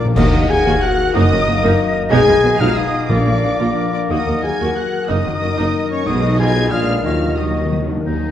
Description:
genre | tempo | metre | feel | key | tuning
classical, dramatic, fast romantic movement for symphony orchestra | 182 BPM | 3/4 | rubato | Eb minor | A4 = 439 Hz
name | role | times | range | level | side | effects
warm symphonic violin section | melody | 0.0-8.3 s | Eb4 to Ab6 | -28 LUFS | left 1 dB | none
clear symphonic violin section | second line | 0.0-8.3 s | Ab4 to Ab5 | -30 LUFS | left 1 dB | none
warm oboe | second line | 0.0-7.7 s | Db5 to Ab5 | -24 LUFS | right 1 dB | none
warm studio viola section | accompaniment | 0.0-8.3 s | D3 to Gb4 | -24 LUFS | right 2 dB | none
dark French horn section | sustained chords | 0.0-7.7 s | Db4 to Ab4 | -21 LUFS | left 3 dB | none
concert harp | arpeggios | 0.0-8.3 s | Gb2 to Cb5 | -24 LUFS | left 8 dB | none
timpani | percussion | 0.0-0.6, 3.1-3.6, 7.0-8.0 s | Bb2 to Eb3 | -22 LUFS | left 1 dB | none
clear clarinet | second line | 0.2-8.3 s | D4 to Bb4 | -28 LUFS | equal | none
hollow concert flute | second line | 0.2-7.9 s | D5 to Gb5 | -26 LUFS | left 1 dB | none
clear symphonic cello section | bass | 0.2-8.3 s | Eb2 to Eb3 | -24 LUFS | right 1 dB | none
mellow tuba | bass | 0.2-7.9 s | Gb1 to Eb2 | -25 LUFS | right 3 dB | none
rich symphonic double bass section | bass | 0.2-8.3 s | Gb1 to Eb2 | -23 LUFS | right 2 dB | none
clash cymbals and concert bass drum | percussion | 0.2-0.8 s | none | -23 LUFS | equal | none
room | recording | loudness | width
wet scoring stage reverb, RT60 1.9 s | worn, warbling old tape, cassette tape, warbly pitch drift | -14 LUFS | side -10 dB against mid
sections
0.2-8.1 A section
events
timpani fill 0.0, 7.0-8.1; band accent 0.2-0.5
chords
0.2 Ebm; 1.1 Ebm/Gb; 2.1 Abm/Cb; 3.1 Bb; 4.1 Ebm; 5.1 Ebm/Gb; 6.1 Abm/Cb; 6.4 Fm7b5/Cb; 6.7 Bb7b9; 7.0 Ebm

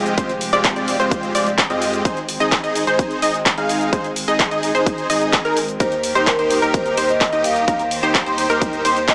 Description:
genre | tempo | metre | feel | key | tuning
EDM, festival progressive house | 128 BPM | 4/4 | straight | Eb major | A4 = 440 Hz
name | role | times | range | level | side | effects
clear studio string section | sustained chords | 0.0-9.1 s | Eb3 to C5 | -30 LUFS | equal | sidechain pumping
unison pluck | arpeggios | 0.0-9.0 s | Bb4 to F5 | -25 LUFS | equal | sidechain pumping, digital delay
dense compressed supersaw | riff | 0.0-9.0 s | Ab3 to F5 | -23 LUFS | equal | sidechain pumping, digital delay
saturated sub bass | bass | 0.0-9.1 s | F1 to F2 | -36 LUFS | equal | sidechain pumping
big-room dance drum kit | drums | 0.1-9.1 s | handclaps, hi-hat, ride cymbal, shaker | -24 LUFS | equal | none
electronic kick drum | drums | 0.2-9.1 s | none | -25 LUFS | equal | overdrive
vibraphone with soft mallets | melody | 5.8-9.1 s | Bb4 to F5 | -23 LUFS | equal | digital delay
room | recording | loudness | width
moderate lush hall reverb, RT60 1.7 s | small speaker sound | -18 LUFS | mono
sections
0.0-9.1 A section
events
none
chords
0.0 Fmadd9; 2.1 Ab; 5.8 Eb

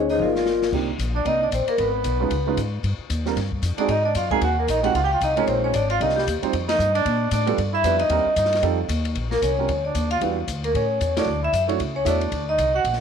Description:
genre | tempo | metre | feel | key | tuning
jazz, small-group swing and bop | 228 BPM | 4/4 | swing 60% on 8ths | unclear | A4 = 440 Hz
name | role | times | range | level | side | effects
vibraphone with medium hard mallets | melody | 0.0-12.9 s | Db4 to Ab5 | -22 LUFS | left 2 dB | none
dark trumpet | second line | 0.0-12.8 s | G3 to Ab4 | -29 LUFS | right 11 dB | none
upright bass | bass | 0.0-13.0 s | G1 to Bb2 | -26 LUFS | left 1 dB | none
open jazz drum kit | drums | 0.1-13.0 s | crash cymbal, hi-hat, kick drum, ride cymbal, snare drum, toms | -32 LUFS | left 7 dB | none
dark upright piano | accompaniment | 0.7-12.2 s | G3 to E5 | -27 LUFS | right 12 dB | none
room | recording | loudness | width
light reverb, small room reverb | 1960s-style stereo with parts hard left and right | -20 LUFS | side -7 dB against mid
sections
0.7-9.2 A section; 9.2-13.0 B section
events
drum fill 0.2-0.7; band accent 6.7, 11.1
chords
0.2 G5; 0.7 Cm7; 1.8 Abm; 2.3 Db9; 2.8 Eb69; 3.9 Ab9; 4.9 Dbmaj13; 6.0 Cm9; 6.5 Fsus2; 7.1 Bb6; 7.6 G7; 8.1 Cm7; 8.6 F7; 9.2 Bb; 10.2 Em7; 10.7 A6; 11.3 Dmaj9; 12.3 D7b9

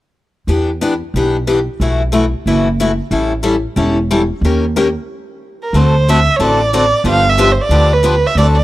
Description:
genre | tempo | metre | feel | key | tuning
acoustic string swing (jazz manouche) | 183 BPM | 4/4 | swing 60% on 8ths | D mixolydian | A4 = 439 Hz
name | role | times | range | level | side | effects
picked steel-string acoustic guitar | accompaniment | 0.5-8.6 s | B2 to Bb4 | -16 LUFS | left 2 dB | none
upright bass | bass | 0.5-8.6 s | E1 to E2 | -15 LUFS | equal | none
dark violin | melody | 5.6-8.6 s | Bb4 to F5 | -14 LUFS | right 3 dB | slapback echo
room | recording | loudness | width
small room ambience | dry, close 1970s-style studio recording | -11 LUFS | side -16 dB against mid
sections
0.5-5.7 A section; 5.7-8.6 B section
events
stop 5.1-5.7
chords
0.5 Em7; 1.8 B7sus4; 3.1 A7; 4.4 Eb7; 5.7 D7; 7.0 G7

